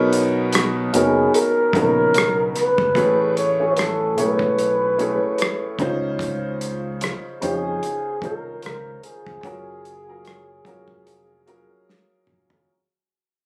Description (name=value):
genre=R&B, neo-soul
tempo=74 BPM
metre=4/4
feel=swing 57% on 16ths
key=unclear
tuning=A4 = 440 Hz
part: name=clear upright piano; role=accompaniment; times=0.0-12.7 s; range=A2 to G#5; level=-24 LUFS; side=equal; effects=plate reverb
part: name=deep dub fingered electric bass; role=bass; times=0.0-12.6 s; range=D#1 to E#2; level=-32 LUFS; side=equal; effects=none
part: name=warm soul drum kit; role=drums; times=0.1-12.7 s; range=hi-hat, kick drum, rim click, snare drum, toms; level=-27 LUFS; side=equal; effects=none
part: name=breathy flugelhorn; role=melody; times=0.9-11.8 s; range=G#4 to C#5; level=-23 LUFS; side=equal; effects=slapback echo, plate reverb
room=moderate small room reverb, RT60 0.5 s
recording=recorded on a phone in the room, studio reverb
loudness=-20 LUFS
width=mono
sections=0.0-12.7 A section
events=fade-out 0.0-12.7; drum fill 11.9-12.7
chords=0.0 Bmaj9; 2.9 Amaj9; 5.8 C#maj9; 9.4 F#maj9